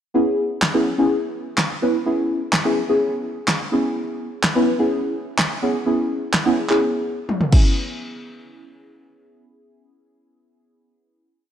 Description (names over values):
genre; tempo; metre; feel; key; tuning
dance-pop; 126 BPM; 4/4; straight; E major; A4 = 440 Hz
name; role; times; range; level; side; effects
deep mellow chord stab; accompaniment; 0.1-11.5 s; B3 to B4; -20 LUFS; equal; chorus, phaser, sidechain pumping
deep house drum kit; drums; 0.6-7.6 s; crash cymbal, handclaps, kick drum, snare drum, toms; -19 LUFS; equal; none
room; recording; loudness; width
moderate lush hall reverb, RT60 2.2 s; worn, warbling old tape, cassette tape, warbly pitch drift; -18 LUFS; side -10 dB against mid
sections
0.1-7.8 verse; 7.8-11.5 final hit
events
drum fill 7.3-7.8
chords
0.1 E6